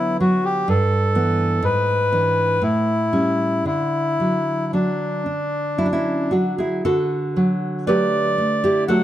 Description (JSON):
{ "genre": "romantic duo for bandoneon and classical guitar", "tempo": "56-64 BPM", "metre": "3/4", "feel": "rubato", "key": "D major", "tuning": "A4 = 440 Hz", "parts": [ { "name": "bandoneon", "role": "melody", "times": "0.0-9.0 s", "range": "D4 to F#5", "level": "-21 LUFS", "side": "left 1 dB", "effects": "none" }, { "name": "nylon-string guitar", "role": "accompaniment", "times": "0.0-9.0 s", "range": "G2 to B4", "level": "-20 LUFS", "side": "right 1 dB", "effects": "none" } ], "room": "moderate recital hall reverb, RT60 1.5 s", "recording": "close, detailed microphones", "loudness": "-18 LUFS", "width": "side -12 dB against mid", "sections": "0.0-6.8 A section; 6.8-9.0 A section", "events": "none", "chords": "0.0 Bm/D; 0.7 Em/G; 1.6 E7/G#; 2.6 A7; 3.7 D", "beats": "| 0.68 1.64 2.62 | 3.66 4.73 5.79 | 6.85 7.87 8.88" }